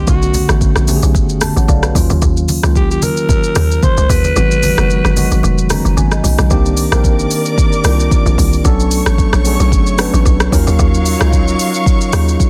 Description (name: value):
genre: amapiano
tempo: 112 BPM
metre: 4/4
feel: swing 55% on 16ths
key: unclear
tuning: A4 = 440 Hz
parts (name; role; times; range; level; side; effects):
- breathy alto saxophone; melody; 0.0-6.0 s; F#4 to C5; -22 LUFS; equal; digital delay
- mellow tine electric piano; accompaniment; 0.0-12.5 s; D3 to Bb5; -20 LUFS; equal; none
- hollow log drum bass; bass; 0.0-12.4 s; F1 to Eb2; -16 LUFS; equal; none
- afro-pop drum kit; drums; 0.1-12.5 s; hi-hat, kick drum, rim click, shaker; -18 LUFS; equal; soft clipping on snare
- congas; percussion; 0.1-6.5 s; none; -25 LUFS; equal; none
- warm studio string section; sustained chords; 6.5-12.5 s; Gb3 to D6; -24 LUFS; equal; none
room: small room ambience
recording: dense, heavily limited modern master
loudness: -13 LUFS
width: mono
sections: 0.0-6.5 A section; 6.5-12.5 B section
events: tine electric piano fill 1.1-2.2, 5.4-6.5; kick muted 4.4-6.5; drop 6.5-12.5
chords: 0.1 Bm9; 2.0 Ebm9; 4.4 Abm9; 6.5 Cm9; 8.7 Bm9; 10.5 Ebm9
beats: | 0.08 0.61 1.15 1.69 | 2.22 2.76 3.29 3.83 | 4.36 4.90 5.43 5.97 | 6.51 7.04 7.58 8.11 | 8.65 9.19 9.72 10.26 | 10.79 11.33 11.86 12.40